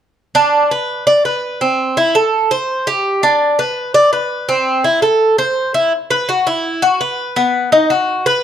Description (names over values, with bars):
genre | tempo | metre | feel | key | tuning
latin | 167 BPM | 4/4 | straight | unclear | A4 = 440 Hz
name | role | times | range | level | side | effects
Cuban tres | solo | 0.3-8.4 s | B3 to D5 | -12 LUFS | equal | none
room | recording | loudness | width
light reverb | dark, warm production | -12 LUFS | side -9 dB against mid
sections
0.2-5.9 A section; 5.9-8.4 B section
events
none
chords
none